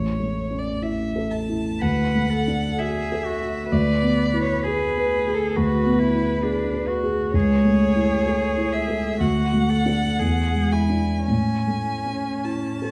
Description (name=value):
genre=classical, slow romantic movement for piano quartet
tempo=50-69 BPM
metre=4/4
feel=rubato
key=A major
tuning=A4 = 439 Hz
part: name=rich violin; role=melody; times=0.0-12.9 s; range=A4 to A5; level=-30 LUFS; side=equal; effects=none
part: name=dark baby grand piano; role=accompaniment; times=0.0-12.9 s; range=A1 to B4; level=-24 LUFS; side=equal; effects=none
part: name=rich cello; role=second line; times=1.8-12.9 s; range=C#4 to B4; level=-32 LUFS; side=equal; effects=none
room=wet recital hall reverb, RT60 1.5 s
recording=dark, warm production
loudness=-22 LUFS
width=mono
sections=0.0-12.9 A section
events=none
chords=0.0 A; 1.8 D; 3.7 E7/D; 7.3 A/C#; 9.2 D; 10.2 E7; 11.3 A